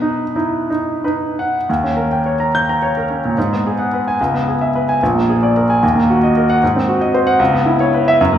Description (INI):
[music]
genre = classical, romantic character piece for solo piano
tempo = 58-78 BPM (dotted quarters)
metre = 6/8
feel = rubato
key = unclear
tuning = A4 = 439 Hz
[part]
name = clear baby grand piano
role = solo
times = 0.0-8.4 s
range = A#1 to G6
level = -13 LUFS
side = equal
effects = none
[sound]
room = wet recital hall reverb, RT60 1.5 s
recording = heard from further back in the room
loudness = -13 LUFS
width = side -10 dB against mid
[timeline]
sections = 0.0-1.7 A section; 1.7-8.4 B section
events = none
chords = 0.0 B; 1.7 D#7; 3.4 G#m7; 4.2 C#m7; 5.0 A#7; 5.8 D#m; 6.6 G#7; 7.4 C#m7